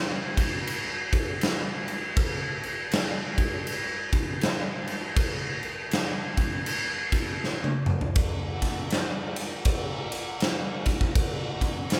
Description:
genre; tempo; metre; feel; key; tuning
metal; 80 BPM; 4/4; swing 61% on 8ths; none; none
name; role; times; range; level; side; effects
big rock drum kit; drums; 0.4-12.0 s; crash cymbal, kick drum, ride cymbal, snare drum, toms; -28 LUFS; equal; none
room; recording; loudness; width
light reverb; band playing live in one room; -28 LUFS; mono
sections
0.0-8.2 A section; 8.2-12.0 B section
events
drum fill 7.4-8.2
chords
none

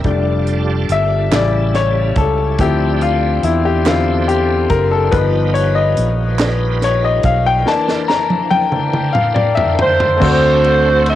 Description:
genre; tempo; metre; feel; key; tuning
slow gospel; 47 BPM (dotted quarters); 6/8; straight; unclear; A4 = 439 Hz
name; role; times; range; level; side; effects
bright grand piano; accompaniment; 0.0-11.2 s; C#3 to Bb5; -16 LUFS; left 6 dB; none
bright tonewheel organ; sustained chords; 0.0-11.2 s; C#3 to E5; -26 LUFS; right 8 dB; slow rotary speaker, chorus vibrato
fingered electric bass; bass; 0.0-11.2 s; F1 to E2; -17 LUFS; right 2 dB; none
tight funk drum kit; drums; 0.0-11.2 s; crash cymbal, hi-hat, kick drum, ride cymbal, snare drum, toms; -19 LUFS; right 1 dB; cassette tape
group handclap; percussion; 1.3-6.8 s; none; -26 LUFS; right 10 dB; none
clear saxophone section; melody; 9.8-11.2 s; F#4 to E5; -13 LUFS; right 2 dB; cassette tape
room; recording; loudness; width
light reverb; home recording on cassette; -12 LUFS; side -12 dB against mid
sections
0.1-10.2 A section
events
grand piano solo 0.1-10.2; drum fill 7.7-10.2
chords
0.1 F69; 1.3 A7; 2.6 Dm9; 5.1 G7alt; 7.7 C9; 10.2 D7

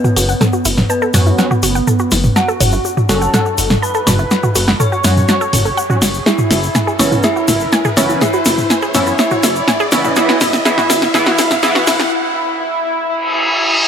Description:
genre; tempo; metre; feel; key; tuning
melodic techno; 123 BPM; 4/4; straight; unclear; A4 = 441 Hz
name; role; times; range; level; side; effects
wide unison lead; melody; 0.0-13.9 s; B3 to C#5; -18 LUFS; equal; lush chorus, digital delay
dark detuned synth bell; second line; 0.0-12.1 s; B4 to C#6; -24 LUFS; left 1 dB; chorus, dub echo
wide unison pluck; arpeggios; 0.0-11.9 s; C#4 to A5; -21 LUFS; equal; dub echo
punchy analog drum machine; drums; 0.0-12.1 s; hi-hat, snare drum, toms; -15 LUFS; equal; none
egg shaker; percussion; 0.0-12.1 s; none; -24 LUFS; left 3 dB; none
riser and reverse cymbal; sound effects; 2.1-13.9 s; none; -21 LUFS; equal; none
gritty driven synth bass; bass; 0.2-12.0 s; F#1 to F#2; -18 LUFS; equal; none
sync-sweep polysynth; stabs; 1.1-11.8 s; E3 to F#4; -22 LUFS; right 2 dB; chorus, dub echo
room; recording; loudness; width
light reverb; high-pass filter; -11 LUFS; side -8 dB against mid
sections
0.0-13.9 A section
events
build-up 0.0-13.9; drum fill 0.0-12.1; filter sweep on synth arpeggio sound 0.0-13.9; filter sweep on analog polysynth 0.0-13.9; filter sweep 0.0-13.9; riser 2.1-12.1; break 12.1-13.9; reverse cymbal 13.2-13.9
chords
0.0 F#m; 6.3 Eadd9/F#

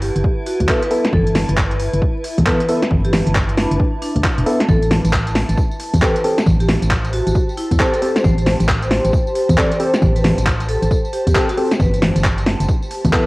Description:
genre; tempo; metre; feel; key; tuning
UK garage, two-step garage; 135 BPM; 4/4; swing 62% on 16ths; A minor; A4 = 440 Hz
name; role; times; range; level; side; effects
vibraphone with hard mallets; melody; 0.0-13.3 s; D4 to D5; -24 LUFS; equal; cassette tape
organ-like FM bass; bass; 0.0-13.1 s; E1 to E2; -19 LUFS; equal; none
garage drum kit; drums; 0.0-13.2 s; congas, handclaps, hi-hat, snare drum, tambourine; -18 LUFS; equal; cassette tape
granular cloud pad; texture; 0.0-13.3 s; E4 to A5; -25 LUFS; equal; built-in reverb, sidechain pumping, cassette tape
electronic kick drum; drums; 0.2-13.2 s; none; -18 LUFS; equal; cassette tape
percussive organ stab; stabs; 0.7-13.3 s; B3 to A4; -20 LUFS; equal; lush chorus, cassette tape
room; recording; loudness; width
moderate small room reverb, RT60 0.6 s; home recording on cassette, vinyl crackle; -14 LUFS; side -21 dB against mid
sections
0.0-13.3 A section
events
none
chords
0.0 G69; 4.7 Am7; 11.8 G69

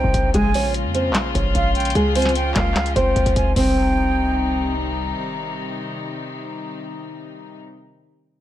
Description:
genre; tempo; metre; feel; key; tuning
hip hop, trap; 149 BPM; 4/4; half-time; C phrygian; A4 = 440 Hz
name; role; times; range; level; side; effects
nylon-string guitar; melody; 0.0-4.7 s; Ab3 to Db5; -22 LUFS; equal; none
silver concert flute; second line; 0.0-4.7 s; F5 to Ab5; -26 LUFS; right 4 dB; tape echo
warm chamber string section; sustained chords; 0.0-7.5 s; C3 to F4; -27 LUFS; left 4 dB; none
warm 808-style bass; bass; 0.0-5.1 s; Bb1 to F2; -23 LUFS; equal; none
booming analog drum machine; drums; 0.0-3.7 s; handclaps, hi-hat, kick drum, snare drum; -23 LUFS; equal; none
room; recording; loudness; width
light reverb, small room ambience; none; -18 LUFS; side -12 dB against mid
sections
0.0-3.6 A section; 3.6-6.8 B section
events
none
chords
0.3 Bbm7; 2.0 Db; 3.6 Cm

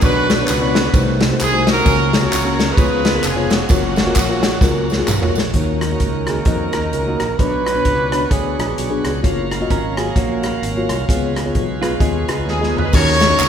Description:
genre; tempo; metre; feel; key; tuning
uptempo gospel; 130 BPM; 4/4; swing 60% on 8ths; F# major; A4 = 440 Hz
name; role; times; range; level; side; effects
warm horn section; melody; 0.0-5.1, 12.5-13.5 s; A#3 to C#5; -19 LUFS; right 1 dB; none
mellow tine electric piano; accompaniment; 0.0-13.5 s; B2 to E#5; -21 LUFS; left 2 dB; slow stereo tremolo
bright tonewheel organ; sustained chords; 0.0-13.5 s; Eb3 to E#5; -28 LUFS; right 2 dB; fast rotary speaker, overdrive
fingered electric bass; bass; 0.0-13.5 s; E#1 to E#2; -22 LUFS; equal; none
warm soul drum kit; drums; 0.0-13.5 s; crash cymbal, hi-hat, kick drum, ride cymbal, rim click, snare drum, toms; -18 LUFS; equal; none
tambourine and handclaps; percussion; 0.0-5.4, 12.9-13.5 s; none; -27 LUFS; equal; none
breathy trumpet; melody; 5.5-9.1 s; G#4 to B4; -22 LUFS; right 3 dB; none
mellow French horn section; sustained chords; 5.5-12.9 s; F#3 to E#5; -32 LUFS; right 2 dB; none
clean electric guitar; second line; 9.7-12.9 s; G#3 to B4; -27 LUFS; right 6 dB; none
room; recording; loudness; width
wet church reverb, RT60 2.8 s; recorded in a church or concert hall; -14 LUFS; side -8 dB against mid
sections
0.0-5.5 A section; 5.5-12.9 B section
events
drum fill 4.6-5.5, 12.5-12.9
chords
0.0 Bmadd9; 0.9 Cdim7; 1.9 F#/C#; 2.8 C#7; 3.7 F#maj7; 5.5 D#m7; 7.4 Bmadd9; 9.2 F#maj7; 11.1 C#7; 12.9 D#m7

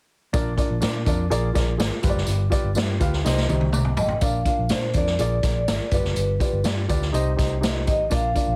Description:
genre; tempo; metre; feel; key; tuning
uptempo 1960s-style soul; 124 BPM; 4/4; straight; Bb major; A4 = 439 Hz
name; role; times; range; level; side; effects
dark baby grand piano; accompaniment; 0.3-8.6 s; G2 to D6; -30 LUFS; equal; none
vintage muted fingered electric bass; bass; 0.3-8.6 s; Gb1 to Bb2; -27 LUFS; equal; tube saturation
swinging big-band drum kit; drums; 0.3-8.5 s; hi-hat, kick drum, snare drum, toms; -27 LUFS; equal; none
tambourine; percussion; 0.3-8.5 s; none; -40 LUFS; equal; none
vibraphone with medium mallets; melody; 4.0-8.6 s; B4 to F5; -28 LUFS; equal; none
room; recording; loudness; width
light reverb; heavily compressed radio sound; -22 LUFS; mono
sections
0.3-4.2 A section; 4.2-8.6 B section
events
drum fill 3.2-4.2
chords
0.3 Bb; 1.3 Bb7; 2.0 G7; 3.2 Cm; 4.2 Bb; 5.2 Bb7; 5.9 G7; 7.1 Cm

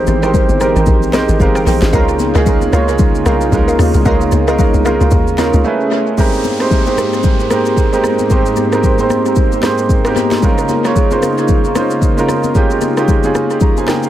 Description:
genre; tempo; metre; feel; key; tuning
amapiano; 113 BPM; 4/4; swing 58% on 16ths; Ab major; A4 = 442 Hz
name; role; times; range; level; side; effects
bright baby grand piano; accompaniment; 0.0-14.1 s; Ab3 to Bb5; -15 LUFS; right 3 dB; tape echo
warm analog pad; sustained chords; 0.0-14.1 s; Ab2 to G#4; -19 LUFS; left 2 dB; chorus, sidechain pumping
tight log drum bass; bass; 0.0-5.6 s; G1 to Eb2; -15 LUFS; equal; none
afro-pop drum kit; drums; 0.1-14.1 s; hi-hat, kick drum, rim click, shaker, snare drum; -16 LUFS; equal; tape echo
congas; percussion; 0.1-14.0 s; none; -23 LUFS; left 8 dB; tape echo
glassy wavetable pluck; stabs; 0.2-5.5 s; Bb4 to G5; -23 LUFS; equal; chorus, tape echo
downlifter; sound effects; 6.2-10.4 s; none; -30 LUFS; left 2 dB; none
room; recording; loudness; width
light reverb; echo-heavy mix; -10 LUFS; side -12 dB against mid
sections
0.0-6.2 A section; 6.2-14.1 B section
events
drop 0.0-6.2; grand piano fill 0.9-1.9; break 5.6-6.2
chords
0.0 Abmaj9; 1.9 Db69; 5.6 Amaj9; 6.2 Abmaj9; 10.4 Db69

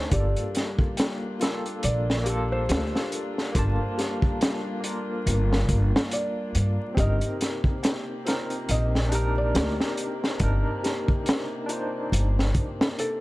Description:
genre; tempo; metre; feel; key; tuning
trip hop; 70 BPM; 4/4; swing 57% on 16ths; G minor; A4 = 440 Hz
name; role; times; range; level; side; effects
barky tine electric piano; accompaniment; 0.0-13.2 s; Bb3 to A5; -32 LUFS; equal; overdrive, tremolo
warm chamber string section; sustained chords; 0.0-13.2 s; C3 to F4; -35 LUFS; left 1 dB; vintage 12-bit sampler grit
upright bass; bass; 0.0-12.5 s; G1 to G2; -25 LUFS; equal; none
felt-muted upright piano; melody; 0.1-13.2 s; A4 to Eb5; -34 LUFS; right 1 dB; dub echo
music box; arpeggios; 0.1-12.0 s; F4 to G5; -36 LUFS; left 3 dB; tape echo
crunchy breakbeat drum kit; drums; 0.1-13.2 s; hi-hat, kick drum, snare drum; -26 LUFS; equal; none
room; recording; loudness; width
small room ambience; dark, warm production, vinyl crackle; -23 LUFS; side -19 dB against mid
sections
0.1-13.2 A section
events
none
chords
0.1 Gm7; 7.0 Cm7/G

